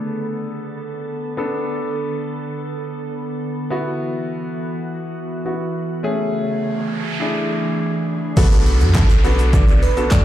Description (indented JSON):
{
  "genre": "dance-pop",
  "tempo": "103 BPM",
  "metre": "4/4",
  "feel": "straight",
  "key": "B dorian",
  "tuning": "A4 = 440 Hz",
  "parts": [
    { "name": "warm grand piano", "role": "accompaniment", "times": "0.0-10.2 s", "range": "A3 to A4", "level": "-25 LUFS", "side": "left 2 dB", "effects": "sidechain pumping, low-pass filter" },
    { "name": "glassy FM pad", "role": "sustained chords", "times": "0.0-8.4 s", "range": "C#3 to A4", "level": "-25 LUFS", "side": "right 2 dB", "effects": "ensemble chorus, built-in reverb, sidechain pumping, low-pass filter" },
    { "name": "noise sweep and downlifter", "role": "sound effects", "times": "6.4-10.2 s", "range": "none", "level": "-28 LUFS", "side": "right 2 dB", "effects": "none" },
    { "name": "airy dreamy lead", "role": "melody", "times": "8.4-10.2 s", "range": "F#4 to D5", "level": "-26 LUFS", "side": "right 3 dB", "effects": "chorus, sidechain pumping, dub echo" },
    { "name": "sub bass with octave", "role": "bass", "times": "8.4-10.2 s", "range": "B1 to F#2", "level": "-16 LUFS", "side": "equal", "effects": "sidechain pumping" },
    { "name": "deep house drum kit", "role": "drums", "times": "8.4-10.2 s", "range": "crash cymbal, handclaps, hi-hat, kick drum, shaker, snare drum", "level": "-15 LUFS", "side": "equal", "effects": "none" },
    { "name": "egg shaker", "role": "percussion", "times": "8.4-10.2 s", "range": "none", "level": "-43 LUFS", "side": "right 11 dB", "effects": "none" }
  ],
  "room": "light reverb, digital ambience",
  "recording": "played on a big sound system in a bare room, large studio reverb",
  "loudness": "-18 LUFS",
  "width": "side -12 dB against mid",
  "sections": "0.0-8.4 A section; 8.4-10.2 B section",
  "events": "noise sweep 6.4-8.4; drop 8.4-10.2",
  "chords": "0.0 Bm7; 3.7 Esus2; 6.0 Amaj7; 7.2 E7; 8.4 Bm7",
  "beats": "0.21 0.80 | 1.38 1.96 2.54 3.13 | 3.71 4.29 4.87 5.46 | 6.04 6.62 7.20 7.79 | 8.37 8.95 9.53 10.12"
}